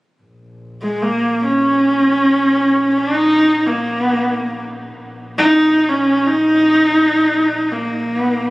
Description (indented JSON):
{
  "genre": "mongolian traditional",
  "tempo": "free time",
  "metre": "none",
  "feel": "none",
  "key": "Bb yu mode",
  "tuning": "A4 = 440 Hz",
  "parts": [
    { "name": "dark double bass", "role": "drone", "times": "0.2-8.5 s", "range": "Bb1", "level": "-36 LUFS", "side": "left 1 dB", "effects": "none" },
    { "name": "clear horsehead fiddle", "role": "melody", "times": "0.8-8.5 s", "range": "Ab3 to Eb4", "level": "-13 LUFS", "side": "equal", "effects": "none" }
  ],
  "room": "moderate huge ambient reverb, RT60 5.0 s",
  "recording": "recorded on a phone in the room, club reverb",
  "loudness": "-13 LUFS",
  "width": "side -21 dB against mid",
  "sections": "0.2-8.5 A section",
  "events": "none",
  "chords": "none",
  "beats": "free time"
}